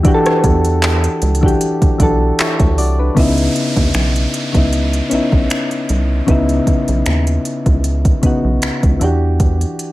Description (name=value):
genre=contemporary R&B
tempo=77 BPM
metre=4/4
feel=swing 54% on 16ths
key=C# minor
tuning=A4 = 439 Hz
part: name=soft electric-piano-like synth keys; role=accompaniment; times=0.0-9.9 s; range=C#3 to D5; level=-16 LUFS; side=left 1 dB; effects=chorus
part: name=smooth R&B drum kit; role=drums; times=0.0-9.9 s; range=finger snaps, handclaps, hi-hat, kick drum, rim click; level=-16 LUFS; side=equal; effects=none
part: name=rubbery square bass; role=bass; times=0.4-9.6 s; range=B1 to E2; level=-16 LUFS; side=equal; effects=none
part: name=downlifter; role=sound effects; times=3.2-9.4 s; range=none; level=-27 LUFS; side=right 1 dB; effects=none
room=digital ambience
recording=none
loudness=-12 LUFS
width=side -17 dB against mid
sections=0.0-3.2 A section; 3.2-9.9 B section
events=none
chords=0.0 Em9; 3.2 C#m9; 9.0 Em9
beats=| 0.05 0.83 1.61 2.38 | 3.16 3.94 4.72 5.50 | 6.28 7.06 7.84 8.62 | 9.40